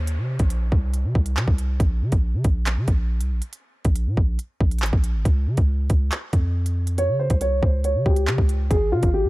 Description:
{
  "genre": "hip hop, drill",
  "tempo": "139 BPM",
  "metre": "4/4",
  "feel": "half-time",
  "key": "unclear",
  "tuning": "A4 = 440 Hz",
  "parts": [
    { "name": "dark concert grand piano", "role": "melody", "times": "0.0, 7.0-9.3 s", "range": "F4 to Db5", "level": "-24 LUFS", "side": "equal", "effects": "none" },
    { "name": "long sustained 808-style bass", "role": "bass", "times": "0.0-9.3 s", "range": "Ab1 to Db3", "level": "-22 LUFS", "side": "equal", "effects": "none" },
    { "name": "downlifter", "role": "sound effects", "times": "0.0-1.8 s", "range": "none", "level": "-43 LUFS", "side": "equal", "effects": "none" },
    { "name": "drill drum kit", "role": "drums", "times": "0.1-9.1 s", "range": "handclaps, hi-hat, kick drum", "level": "-20 LUFS", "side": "equal", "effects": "none" }
  ],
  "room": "little or no reverb",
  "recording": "dark, warm production",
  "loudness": "-19 LUFS",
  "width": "side -19 dB against mid",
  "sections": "0.0-9.3 A section",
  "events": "break 0.1-7.0",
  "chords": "0.0 N.C.; 5.3 Db; 8.7 Ab"
}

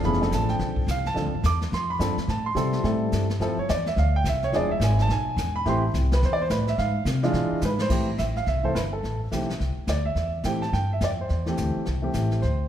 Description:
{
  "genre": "jazz piano trio",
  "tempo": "213 BPM",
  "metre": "4/4",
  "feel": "swing 61% on 8ths",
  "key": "A minor",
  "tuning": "A4 = 439 Hz",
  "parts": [
    { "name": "warm baby grand piano", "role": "melody", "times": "0.0-12.7 s", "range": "E3 to D6", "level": "-26 LUFS", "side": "right 1 dB", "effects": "none" },
    { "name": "upright bass", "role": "bass", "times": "0.0-12.7 s", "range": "E1 to C3", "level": "-25 LUFS", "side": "equal", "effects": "none" },
    { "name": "jazz brush drum kit", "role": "drums", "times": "0.0-12.7 s", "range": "brushed snare drum, crash cymbal, hi-hat, kick drum, snare drum", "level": "-33 LUFS", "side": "left 1 dB", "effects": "none" }
  ],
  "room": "moderate scoring stage reverb, RT60 1.9 s",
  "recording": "recorded in a church or concert hall",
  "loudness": "-22 LUFS",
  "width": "side -10 dB against mid",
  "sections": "0.0-7.9 A section; 7.9-12.7 B section",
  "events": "grand piano solo 0.0-7.9; drum fill 7.6",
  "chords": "0.0 Dm7; 2.3 Am7; 3.4 Fmaj7(no3); 4.5 E7; 5.7 Am; 6.8 E7b9; 7.9 Am7"
}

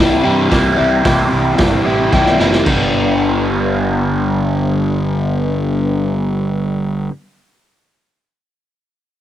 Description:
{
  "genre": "garage rock duo or trio",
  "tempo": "111 BPM",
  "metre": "4/4",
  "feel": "straight",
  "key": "G major",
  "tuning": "A4 = 435 Hz",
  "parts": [
    { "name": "crunchy overdriven guitar", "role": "riff", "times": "0.0-7.1 s", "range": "G2 to G4", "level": "-14 LUFS", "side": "equal", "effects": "phaser" },
    { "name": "fuzz picked electric bass", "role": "bass", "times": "0.0-7.1 s", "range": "F#1 to G2", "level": "-22 LUFS", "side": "equal", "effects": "overdrive" },
    { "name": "raw garage drum kit", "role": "drums", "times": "0.5-2.8 s", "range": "crash cymbal, hi-hat, kick drum, snare drum", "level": "-18 LUFS", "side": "equal", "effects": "none" }
  ],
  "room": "moderate studio reverb, RT60 0.6 s",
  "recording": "home recording on cassette",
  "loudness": "-13 LUFS",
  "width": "side -11 dB against mid",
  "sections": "0.0-2.7 A section; 2.7-7.0 B section",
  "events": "drum fill 2.1-2.7",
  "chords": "0.0 C; 2.7 G"
}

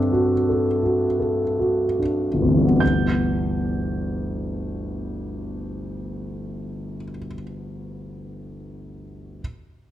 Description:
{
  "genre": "classical, impressionist solo piano",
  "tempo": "35-45 BPM",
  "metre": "3/4",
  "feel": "rubato",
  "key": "G major",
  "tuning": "A4 = 440 Hz",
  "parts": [
    { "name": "clear concert grand piano", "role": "solo", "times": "0.0-9.4 s", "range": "G1 to G6", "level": "-22 LUFS", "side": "equal", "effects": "none" }
  ],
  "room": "wet recital hall reverb, RT60 1.5 s",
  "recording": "dark, warm production",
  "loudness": "-20 LUFS",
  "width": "side -12 dB against mid",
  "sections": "0.0-2.8 A section; 2.8-7.2 B section",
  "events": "slowing down 0.0-2.8",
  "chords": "0.0 D9/G; 2.8 G6"
}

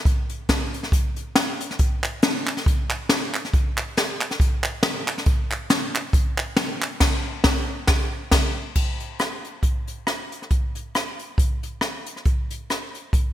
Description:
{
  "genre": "gospel",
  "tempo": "138 BPM",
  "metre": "4/4",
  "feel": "swing 56% on 8ths",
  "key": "none",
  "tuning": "none",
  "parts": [
    { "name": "jazz brush drum kit", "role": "drums", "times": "0.1-13.2 s", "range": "crash cymbal, hi-hat, kick drum, rim click, snare drum", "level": "-21 LUFS", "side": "equal", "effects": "gated reverb" },
    { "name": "group handclap", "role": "percussion", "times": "2.0-6.9 s", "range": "none", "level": "-27 LUFS", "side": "right 2 dB", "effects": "none" }
  ],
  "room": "light reverb, small room ambience",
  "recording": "bright 1980s-style digital production",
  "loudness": "-21 LUFS",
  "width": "side -12 dB against mid",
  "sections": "0.0-8.8 A section; 8.8-13.3 B section",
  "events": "band accent 7.0-8.8",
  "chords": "none"
}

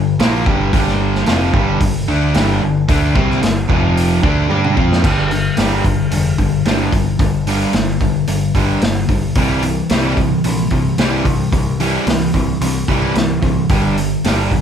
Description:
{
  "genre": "classic rock",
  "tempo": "111 BPM",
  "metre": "4/4",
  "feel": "straight",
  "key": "G minor",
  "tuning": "A4 = 439 Hz",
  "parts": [
    { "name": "crunchy overdriven guitar", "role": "riff", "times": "0.0-14.6 s", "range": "F2 to G4", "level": "-20 LUFS", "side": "right 6 dB", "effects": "none" },
    { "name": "distorted electric guitar", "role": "riff", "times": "0.0-14.6 s", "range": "F2 to G4", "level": "-20 LUFS", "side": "left 7 dB", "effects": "distortion" },
    { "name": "growling picked electric bass", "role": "bass", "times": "0.0-14.6 s", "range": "F1 to G2", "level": "-19 LUFS", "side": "equal", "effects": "overdrive" },
    { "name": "vintage drum kit", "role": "drums", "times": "0.2-14.6 s", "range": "crash cymbal, hi-hat, kick drum, snare drum, toms", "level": "-18 LUFS", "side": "equal", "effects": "none" }
  ],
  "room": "light reverb",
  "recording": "band playing live in one room",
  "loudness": "-13 LUFS",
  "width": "side -8 dB against mid",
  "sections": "0.0-5.0 A section; 5.0-14.6 B section",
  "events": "drum fill 4.5-5.0",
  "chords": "0.0 Gm; 3.7 F5; 4.2 G5; 9.4 C; 13.7 G5"
}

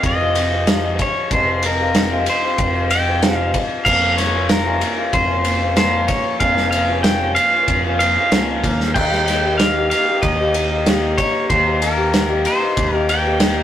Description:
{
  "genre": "folk rock and heartland rock",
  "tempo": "94 BPM",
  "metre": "4/4",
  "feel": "straight",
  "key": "unclear",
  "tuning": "A4 = 438 Hz",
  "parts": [
    { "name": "pedal steel guitar", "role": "melody", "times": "0.0-13.6 s", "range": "Bb4 to G5", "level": "-19 LUFS", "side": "equal", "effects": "none" },
    { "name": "picked acoustic archtop guitar", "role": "accompaniment", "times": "0.0-13.6 s", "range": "F2 to G4", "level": "-22 LUFS", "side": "left 2 dB", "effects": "none" },
    { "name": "picked electric bass", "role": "bass", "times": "0.0-13.6 s", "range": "F1 to Eb2", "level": "-24 LUFS", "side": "right 1 dB", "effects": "none" },
    { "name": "loose indie drum kit", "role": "drums", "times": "0.0-13.6 s", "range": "crash cymbal, kick drum, ride cymbal, snare drum", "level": "-19 LUFS", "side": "equal", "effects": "none" }
  ],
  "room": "moderate stone room reverb, RT60 1.2 s",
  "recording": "rough rehearsal-room recording, tube saturation",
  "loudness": "-14 LUFS",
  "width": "side -10 dB against mid",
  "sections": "0.0-13.6 A section",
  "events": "none",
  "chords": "0.0 Fm; 3.9 Bbm/F; 9.0 Eb"
}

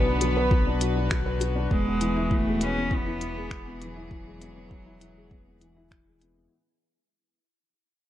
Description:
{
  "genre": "piano and strings electronica",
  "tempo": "100 BPM",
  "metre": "4/4",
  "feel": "straight",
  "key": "unclear",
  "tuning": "A4 = 441 Hz",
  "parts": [
    { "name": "warm cello", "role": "melody", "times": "0.0-5.9 s", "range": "F#3 to C#4", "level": "-30 LUFS", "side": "right 1 dB", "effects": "none" },
    { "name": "warm studio string section", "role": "sustained chords", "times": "0.0-6.5 s", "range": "D3 to B4", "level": "-34 LUFS", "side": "left 1 dB", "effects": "none" },
    { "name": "felt-muted upright piano", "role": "riff", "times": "0.0-6.5 s", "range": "E3 to B4", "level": "-30 LUFS", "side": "left 2 dB", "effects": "tape echo" },
    { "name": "dark detuned saw bass", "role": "bass", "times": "0.0-6.5 s", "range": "E1 to B1", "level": "-30 LUFS", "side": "equal", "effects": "sidechain pumping" },
    { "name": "minimal click drum kit", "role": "drums", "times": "0.2-6.3 s", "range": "finger snaps, hi-hat", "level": "-34 LUFS", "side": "left 1 dB", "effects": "none" },
    { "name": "electronic kick drum", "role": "drums", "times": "0.5-6.0 s", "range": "none", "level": "-26 LUFS", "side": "equal", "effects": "none" }
  ],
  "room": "light reverb, small room ambience",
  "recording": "dark, warm production, lossy compression artefacts",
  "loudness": "-23 LUFS",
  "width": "side -12 dB against mid",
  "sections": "0.0-6.5 A section",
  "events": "drop 0.0-6.5; fade-out 0.0-6.5",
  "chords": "0.0 Bm; 1.7 Eadd9"
}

